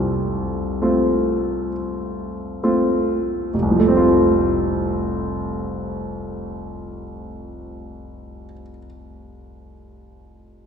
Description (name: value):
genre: classical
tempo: 33 BPM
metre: 4/4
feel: rubato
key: F major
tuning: A4 = 438 Hz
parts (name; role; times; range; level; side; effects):
- clear concert grand piano; accompaniment; 0.0-10.7 s; F1 to A5; -19 LUFS; equal; none
room: wet church reverb, RT60 2.8 s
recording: recorded in a church or concert hall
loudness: -18 LUFS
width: side -7 dB against mid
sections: 0.0-3.5 A section; 3.5-10.7 B section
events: slowing down 0.0-3.5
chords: 0.0 F